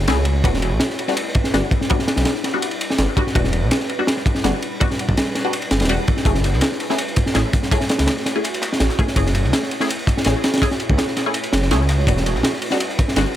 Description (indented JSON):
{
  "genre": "drum and bass, jungle",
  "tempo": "165 BPM",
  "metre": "4/4",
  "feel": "straight",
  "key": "unclear",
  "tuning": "A4 = 441 Hz",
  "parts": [
    { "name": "detuned saw bass", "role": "bass", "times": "0.0-13.3 s", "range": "D1 to C#2", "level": "-20 LUFS", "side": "equal", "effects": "none" },
    { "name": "filtered dub chord stab", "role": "stabs", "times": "0.1-13.3 s", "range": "G3 to G#4", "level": "-25 LUFS", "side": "left 2 dB", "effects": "phaser, dub echo" },
    { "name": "crunchy breakbeat drum kit", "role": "drums", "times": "0.1-13.3 s", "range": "kick drum, ride cymbal, snare drum", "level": "-19 LUFS", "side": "equal", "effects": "none" },
    { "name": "crunchy breakbeat drum kit", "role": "drums", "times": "6.3-13.3 s", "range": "hi-hat, snare drum", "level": "-32 LUFS", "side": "left 2 dB", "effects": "none" }
  ],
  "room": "studio reverb",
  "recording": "none",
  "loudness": "-17 LUFS",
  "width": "side -12 dB against mid",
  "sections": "0.0-13.4 A section",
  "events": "none",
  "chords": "0.4 Em7; 6.3 F#m7; 12.1 Em7"
}